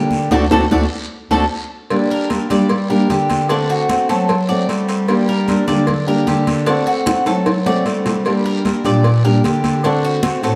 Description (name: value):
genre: latin, Cuban son and guajira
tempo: 151 BPM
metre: 4/4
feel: straight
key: G minor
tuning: A4 = 440 Hz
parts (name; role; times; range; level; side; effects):
- fingerpicked steel-string acoustic guitar; accompaniment; 0.0-10.6 s; D3 to G4; -20 LUFS; equal; none
- Cuban tres; arpeggios; 0.0-10.6 s; D4 to D5; -24 LUFS; equal; none
- warm bass clarinet; bass; 0.0-10.6 s; D2 to G3; -22 LUFS; equal; none
- congas; percussion; 0.1-10.6 s; none; -26 LUFS; equal; none
- guiro; percussion; 0.1-10.6 s; none; -36 LUFS; equal; none
- bongos and cowbell; percussion; 0.3-10.6 s; none; -26 LUFS; equal; none
room: wet stone room reverb, RT60 1.3 s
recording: band playing live in one room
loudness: -16 LUFS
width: mono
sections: 0.0-1.9 A section; 1.9-10.6 A section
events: band accent 0.3-1.9; drum fill 0.7-1.9, 7.1-8.3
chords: 0.3 D7; 1.9 Gm; 3.5 D7; 5.1 Gm; 6.7 D7; 8.3 Gm; 9.8 D7